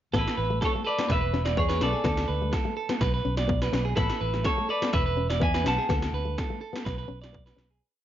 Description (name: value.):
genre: highlife guitar band.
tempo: 125 BPM.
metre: 4/4.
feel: straight.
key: A major.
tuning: A4 = 440 Hz.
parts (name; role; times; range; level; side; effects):
nylon-string guitar; accompaniment; 0.1-7.7 s; A3 to C#4; -34 LUFS; left 5 dB; none.
clean electric guitar; arpeggios; 0.1-7.8 s; G#4 to D5; -32 LUFS; right 6 dB; tape echo.
fingered electric bass; bass; 0.1-7.8 s; E1 to E2; -29 LUFS; equal; none.
80s electronic pad drums; drums; 0.1-7.7 s; kick drum, snare drum; -30 LUFS; equal; overdrive.
clean electric guitar; melody; 0.2-6.3 s; E4 to A5; -29 LUFS; left 1 dB; none.
room: digital ambience.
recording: nothing above 7.4 kHz.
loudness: -24 LUFS.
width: side -11 dB against mid.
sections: 0.1-7.8 A section.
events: fade-out 5.9-7.8.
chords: 0.1 Asus2; 1.1 E7; 2.0 D5; 3.0 Bm; 4.0 Asus2; 4.9 E7; 5.9 D; 6.8 Bm.